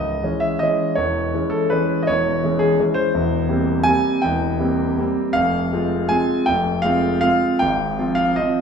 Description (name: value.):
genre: classical, piano waltz.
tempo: 150-179 BPM.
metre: 3/4.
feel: rubato.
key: C# minor, F minor from 3.1 s.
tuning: A4 = 440 Hz.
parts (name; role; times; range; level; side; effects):
clear grand piano; solo; 0.0-8.6 s; C#1 to Ab5; -17 LUFS; equal; none.
room: wet recital hall reverb, RT60 1.3 s.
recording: heard from further back in the room.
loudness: -17 LUFS.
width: side -6 dB against mid.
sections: 0.0-8.6 A section.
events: none.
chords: 0.0 C#m; 1.0 C#m/E; 3.1 C7/E; 5.4 Fm; 7.6 Fm/Ab.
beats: 0.23 0.61 | 0.98 1.34 1.72 | 2.09 2.44 2.79 | 3.14 3.49 3.87 | 4.24 4.60 4.98 | 5.36 5.73 6.11 | 6.48 6.85 7.23 | 7.62 7.99 8.38.